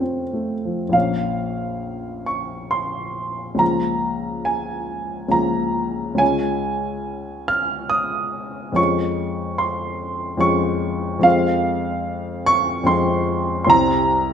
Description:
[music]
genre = classical, romantic nocturne for solo piano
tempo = 62-75 BPM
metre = 3/4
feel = rubato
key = Bb minor, F minor from 11.3 s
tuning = A4 = 440 Hz
[part]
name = warm upright piano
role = solo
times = 0.0-14.3 s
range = Bb1 to F6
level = -19 LUFS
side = equal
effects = none
[sound]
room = moderate recital hall reverb, RT60 1.4 s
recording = none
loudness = -19 LUFS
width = side -8 dB against mid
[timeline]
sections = 0.9-14.3 A section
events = none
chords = 0.0 F; 0.9 Bbm; 3.6 Bbm/Db; 6.2 Db; 8.8 Db/F; 13.7 C7

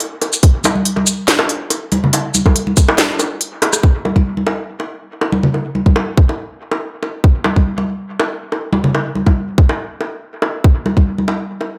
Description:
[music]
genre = dubstep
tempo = 141 BPM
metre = 4/4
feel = half-time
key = none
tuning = none
[part]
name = garage drum kit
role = drums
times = 0.0-3.8 s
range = hi-hat, rim click, shaker, snare drum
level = -18 LUFS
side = equal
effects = low-pass filter on hats, low-pass filter on perc, low-pass filter on snare, low-pass filter on room
[part]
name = bongos and congas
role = percussion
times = 0.2-11.7 s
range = none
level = -20 LUFS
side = equal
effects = dub echo
[part]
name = electronic kick drum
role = drums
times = 0.4-11.0 s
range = none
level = -13 LUFS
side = equal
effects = none
[sound]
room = light reverb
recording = none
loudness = -16 LUFS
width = mono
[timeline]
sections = 0.0-3.8 A section; 3.8-11.8 B section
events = drum fill 3.6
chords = none

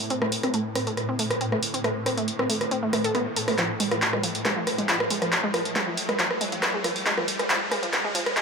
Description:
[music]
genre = driving peak-time techno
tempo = 138 BPM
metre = 4/4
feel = straight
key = A harmonic minor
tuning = A4 = 439 Hz
[part]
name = swarming drone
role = drone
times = 0.0-8.4 s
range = A2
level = -34 LUFS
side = equal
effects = built-in reverb
[part]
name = punchy analog drum machine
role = drums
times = 0.0-8.4 s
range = handclaps, hi-hat, rim click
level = -25 LUFS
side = equal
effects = none
[part]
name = riser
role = sound effects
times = 0.4-8.4 s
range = none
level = -36 LUFS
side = equal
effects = none
[part]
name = wide unison pluck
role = riff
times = 0.1-8.4 s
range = F3 to A4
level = -28 LUFS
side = equal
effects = overdrive, ping-pong delay
[sound]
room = moderate huge ambient reverb, RT60 8.7 s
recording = high-pass filter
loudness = -23 LUFS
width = side -5 dB against mid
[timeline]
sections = 0.0-8.4 A section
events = build-up 0.0-8.4; filter sweep on synth arpeggio sound 0.0-8.4; riser 0.4-8.4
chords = none

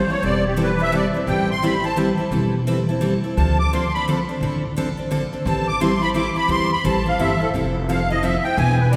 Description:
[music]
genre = acoustic string swing (jazz manouche)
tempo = 173 BPM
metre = 3/4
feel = swing 62% on 8ths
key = A minor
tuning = A4 = 440 Hz
[part]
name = musette accordion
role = second line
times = 0.0-9.0 s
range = G4 to D6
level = -25 LUFS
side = equal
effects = none
[part]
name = picked steel-string acoustic guitar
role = accompaniment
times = 0.1-9.0 s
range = D3 to A4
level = -23 LUFS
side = equal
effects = none
[part]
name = upright bass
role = bass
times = 0.2-9.0 s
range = E1 to E2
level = -26 LUFS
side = equal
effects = none
[sound]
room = wet church reverb, RT60 2.9 s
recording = recorded in a church or concert hall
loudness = -20 LUFS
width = mono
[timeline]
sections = 0.0-9.0 A section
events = accordion solo 0.0-9.0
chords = 0.0 Am7; 3.4 Dm7; 5.5 Am7; 7.5 Fmaj7

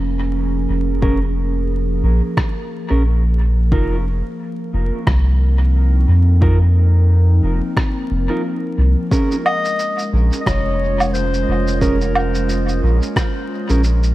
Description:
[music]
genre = ambient dub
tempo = 89 BPM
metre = 4/4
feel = swing 58% on 16ths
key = Bb minor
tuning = A4 = 439 Hz
[part]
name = warbly tape-like pad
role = sustained chords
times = 0.0-14.1 s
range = F3 to Bb4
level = -24 LUFS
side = right 1 dB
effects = chorus, built-in reverb
[part]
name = soft dub sub bass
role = bass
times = 0.0-14.1 s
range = F1 to F2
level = -15 LUFS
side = equal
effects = none
[part]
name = mellow electric guitar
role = stabs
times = 1.0-13.8 s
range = Db4 to Bb4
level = -26 LUFS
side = right 2 dB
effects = dub echo
[part]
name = electronic kick drum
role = drums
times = 1.0-13.3 s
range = none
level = -19 LUFS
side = equal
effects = overdrive
[part]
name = electronic rim click, shaker and woodblock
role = drums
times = 2.4-14.1 s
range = none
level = -24 LUFS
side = right 1 dB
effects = dub echo
[part]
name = dark clarinet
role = melody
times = 9.5-13.1 s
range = Bb4 to Eb5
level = -22 LUFS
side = left 2 dB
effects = dub echo
[sound]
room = digital ambience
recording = vinyl crackle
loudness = -14 LUFS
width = side -16 dB against mid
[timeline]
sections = 0.0-14.1 A section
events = none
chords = 0.0 Bbm7; 3.7 F7sus4; 9.1 Bbm7

